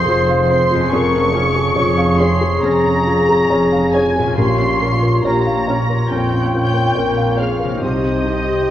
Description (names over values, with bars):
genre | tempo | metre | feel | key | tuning
cinematic, emotional film score for orchestra | 69 BPM | 4/4 | rubato | unclear | A4 = 441 Hz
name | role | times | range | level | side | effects
muted studio violin section | melody | 0.0-8.7 s | Eb6 to Db7 | -26 LUFS | left 2 dB | none
dark clarinet | second line | 0.0-8.7 s | F4 to Ab4 | -24 LUFS | left 1 dB | none
large flute ensemble | second line | 0.0-8.7 s | Eb5 to Db6 | -24 LUFS | equal | none
muted studio violin section | second line | 0.0-8.7 s | Eb5 to Db6 | -26 LUFS | left 1 dB | none
warm oboe | second line | 0.0-8.7 s | C5 to Db5 | -26 LUFS | right 2 dB | none
felt-muted upright piano | accompaniment | 0.0-8.7 s | Bb1 to F5 | -21 LUFS | equal | none
mellow French horn section | sustained chords | 0.0-8.7 s | F4 to C5 | -20 LUFS | left 2 dB | none
concert harp | arpeggios | 0.0-8.7 s | F2 to C5 | -26 LUFS | left 5 dB | none
muted studio viola section | accompaniment | 0.1-8.3 s | C4 to C5 | -29 LUFS | right 1 dB | none
muted studio cello section | bass | 0.1-8.6 s | F2 to C3 | -23 LUFS | right 2 dB | none
muted studio double bass section | bass | 0.1-8.6 s | F1 to C2 | -23 LUFS | right 2 dB | none
room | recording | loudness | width
wet scoring stage reverb, RT60 1.6 s | worn, warbling old tape, cassette tape, warbly pitch drift | -13 LUFS | side -11 dB against mid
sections
0.0-8.7 A section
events
none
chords
0.0 Fm; 0.9 Db/F; 4.4 Bbmadd9; 7.8 Cm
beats
0.09 | 0.92 1.76 2.63 3.50 | 4.37 5.24 6.11 6.96 | 7.82 8.70